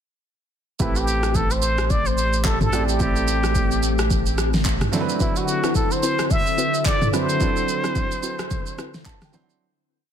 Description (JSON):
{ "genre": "amapiano", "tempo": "109 BPM", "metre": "4/4", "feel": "swing 58% on 16ths", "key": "A dorian", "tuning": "A4 = 440 Hz", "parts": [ { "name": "trumpet with plunger mute", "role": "melody", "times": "0.8-9.1 s", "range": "E4 to E5", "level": "-25 LUFS", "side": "equal", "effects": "tape echo" }, { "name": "warm grand piano", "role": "accompaniment", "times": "0.8-9.6 s", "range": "F#3 to A5", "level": "-28 LUFS", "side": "right 6 dB", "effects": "none" }, { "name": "glassy FM pad", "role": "sustained chords", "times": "1.2-9.6 s", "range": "D3 to A4", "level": "-29 LUFS", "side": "left 2 dB", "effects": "ensemble chorus, built-in reverb, sidechain pumping" }, { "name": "saturated sub bass", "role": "bass", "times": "0.8-4.9 s", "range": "A1", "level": "-24 LUFS", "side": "equal", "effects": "none" }, { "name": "deep house drum kit", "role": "drums", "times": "0.8-9.6 s", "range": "handclaps, kick drum, rim click, shaker, snare drum, toms", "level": "-23 LUFS", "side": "equal", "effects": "soft clipping on snare" }, { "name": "soft round pluck", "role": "stabs", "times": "5.2-9.4 s", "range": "C4 to B5", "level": "-30 LUFS", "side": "left 2 dB", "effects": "chorus, tape echo" } ], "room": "light reverb, digital ambience", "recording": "dense, heavily limited modern master", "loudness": "-19 LUFS", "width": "side -8 dB against mid", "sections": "0.8-9.6 groove", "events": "fade-out 7.4-9.6; grand piano fill 8.8-9.6", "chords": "0.8 Am9; 4.9 D13" }